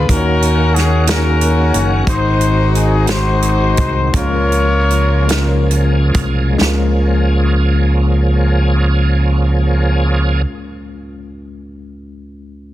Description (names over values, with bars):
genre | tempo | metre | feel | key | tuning
slow gospel | 43-60 BPM (dotted quarters) | 6/8 | straight | Db major | A4 = 445 Hz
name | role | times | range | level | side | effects
warm horn section | melody | 0.0-5.7 s | Db4 to Db5 | -17 LUFS | left 3 dB | none
tine electric piano | accompaniment | 0.0-12.7 s | Db2 to Db5 | -22 LUFS | left 3 dB | medium stereo tremolo
bright tonewheel organ | sustained chords | 0.0-10.4 s | Eb3 to Ab4 | -21 LUFS | right 3 dB | slow rotary speaker, chorus vibrato
fingered electric bass | bass | 0.0-10.4 s | Gb1 to Eb2 | -14 LUFS | equal | none
natural country drum kit | drums | 0.1-6.8 s | hi-hat, kick drum, snare drum | -19 LUFS | right 1 dB | none
room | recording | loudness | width
little or no reverb | dense, heavily limited modern master | -11 LUFS | side -14 dB against mid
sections
0.0-6.6 A section; 6.6-12.2 B section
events
slowing down 2.1-6.6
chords
0.1 Ebm7; 2.1 Ab7; 4.1 Db6